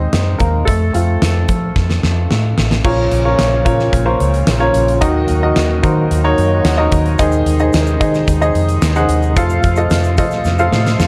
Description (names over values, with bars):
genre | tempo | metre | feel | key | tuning
piano-driven pop | 110 BPM | 4/4 | straight | Bb minor | A4 = 438 Hz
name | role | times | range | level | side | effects
clear upright piano | accompaniment | 0.0-11.1 s | Bb2 to Gb5 | -18 LUFS | equal | none
vintage muted fingered electric bass | bass | 0.0-11.1 s | A1 to F3 | -18 LUFS | equal | none
huge arena drum kit | drums | 0.1-11.1 s | crash cymbal, hi-hat, kick drum, snare drum | -21 LUFS | equal | none
bright tonewheel organ | sustained chords | 2.8-11.1 s | C3 to Gb4 | -26 LUFS | equal | chorus vibrato, slow rotary speaker
egg shaker | percussion | 7.2-11.1 s | none | -39 LUFS | equal | none
room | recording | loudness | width
small room ambience | dark, warm production | -14 LUFS | mono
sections
0.0-2.8 A section; 2.8-11.1 B section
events
upright piano solo 0.0-2.8; drum fill 1.8-2.8, 10.5-11.1; upright piano fill 6.4-7.2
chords
0.0 Ab/Eb; 0.7 F; 2.8 Bbm; 5.0 Ebm; 7.2 Ab/Eb; 9.4 F